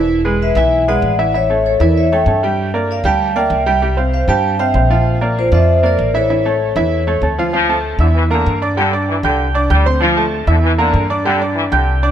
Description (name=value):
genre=latin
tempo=194 BPM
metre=4/4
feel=straight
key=unclear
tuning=A4 = 435 Hz
part: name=bright upright piano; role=accompaniment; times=0.0-12.1 s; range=E3 to G6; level=-17 LUFS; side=right 2 dB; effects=none
part: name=upright bass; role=bass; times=0.0-12.1 s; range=E1 to G2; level=-17 LUFS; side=equal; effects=none
part: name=vibraphone with medium mallets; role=melody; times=0.4-7.2 s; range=F4 to A5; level=-17 LUFS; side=left 1 dB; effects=none
part: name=brilliant trombone section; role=second line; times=7.5-12.0 s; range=D3 to G3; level=-18 LUFS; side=left 1 dB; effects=none
room=light reverb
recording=none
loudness=-12 LUFS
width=side -10 dB against mid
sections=0.0-7.5 A section; 7.5-12.1 B section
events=none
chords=0.1 E7; 1.3 A; 2.6 Gm; 3.8 Csus4; 5.1 Bb; 6.3 A; 7.5 Dm; 8.2 Em7b5; 8.8 G5; 10.0 Dm; 10.6 Em7b5; 11.3 G5